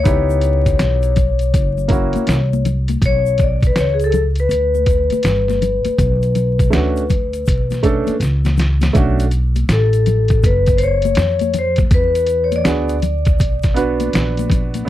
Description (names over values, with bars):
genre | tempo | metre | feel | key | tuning
hip hop, jazz-hop | 81 BPM | 4/4 | swing 64% on 16ths | B minor | A4 = 440 Hz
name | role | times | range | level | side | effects
vibraphone with medium mallets | melody | 0.0-14.5 s | G#4 to D5 | -19 LUFS | left 3 dB | slapback echo
warm upright piano | accompaniment | 0.0-14.9 s | A3 to B4 | -20 LUFS | right 4 dB | none
upright bass | bass | 0.0-14.8 s | F#1 to E#2 | -18 LUFS | equal | none
trip hop sampler-style drum kit | drums | 0.1-14.9 s | hi-hat, kick drum, snare drum | -17 LUFS | equal | none
egg shaker and congas | percussion | 0.1-14.9 s | none | -26 LUFS | left 6 dB | none
room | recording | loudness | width
little or no reverb | dry, close 1970s-style studio recording, vinyl crackle | -13 LUFS | side -13 dB against mid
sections
0.0-8.9 A section; 8.9-14.9 B section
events
drum fill 8.2-8.9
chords
0.1 C#m7b5; 1.5 F#7; 3.0 Bm9; 8.9 B7sus2; 11.9 E7sus2